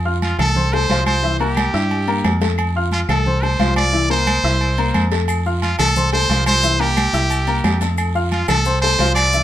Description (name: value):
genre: latin, salsa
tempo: 178 BPM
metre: 4/4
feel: straight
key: F major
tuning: A4 = 440 Hz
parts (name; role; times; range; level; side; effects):
- fingered electric bass; bass; 0.0-9.4 s; C2 to G2; -19 LUFS; equal; none
- warm upright piano; accompaniment; 0.1-9.4 s; E3 to F6; -22 LUFS; left 4 dB; none
- congas; percussion; 0.1-9.4 s; none; -24 LUFS; equal; none
- brilliant trumpet; melody; 0.2-9.4 s; F4 to D5; -19 LUFS; right 1 dB; none
- agogo bells and timbales; percussion; 0.2-9.3 s; none; -25 LUFS; right 2 dB; none
- guiro; percussion; 0.2-9.4 s; none; -32 LUFS; right 6 dB; none
- claves; percussion; 0.4-9.3 s; none; -32 LUFS; left 2 dB; none
- maracas; percussion; 5.3-9.4 s; none; -34 LUFS; left 5 dB; none
room: moderate studio reverb, RT60 0.7 s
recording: minimal, uncompressed stereo recording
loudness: -15 LUFS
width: side -12 dB against mid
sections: 0.0-9.4 A section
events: none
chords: 0.0 F; 1.2 C7; 2.6 F; 3.9 C7; 5.3 F; 6.6 C7; 8.0 F